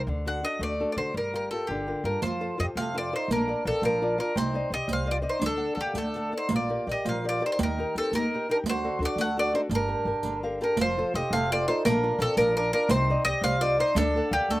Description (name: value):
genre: italian folk, Italian serenade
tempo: 113 BPM (dotted quarters)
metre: 6/8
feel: rubato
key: unclear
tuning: A4 = 444 Hz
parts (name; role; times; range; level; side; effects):
- nylon-string guitar; accompaniment; 0.0-14.6 s; C3 to F#5; -30 LUFS; left 2 dB; slapback echo
- upright bass; bass; 0.1-14.6 s; F1 to D3; -33 LUFS; equal; none
- bowl-back mandolin; melody; 0.3-14.6 s; G4 to F#5; -28 LUFS; equal; none
- mellow accordion; second line; 2.1-14.6 s; Bb3 to C5; -34 LUFS; right 4 dB; slapback echo
- riq; percussion; 2.2-14.6 s; none; -32 LUFS; right 4 dB; none
room: little or no reverb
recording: recorded outdoors, with no room sound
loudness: -24 LUFS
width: side -17 dB against mid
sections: 0.0-2.2 A section; 2.2-10.8 B section; 10.8-14.6 B section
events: nylon-string guitar fill 10.2-10.8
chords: 0.1 D; 1.1 Gm7; 2.2 F; 3.3 Bb; 4.4 Cmadd9; 5.4 D; 6.5 Bb6; 7.6 Eb; 8.7 D; 9.7 Gmadd9; 10.8 F; 11.9 Bb; 12.9 Cmadd9; 14.0 D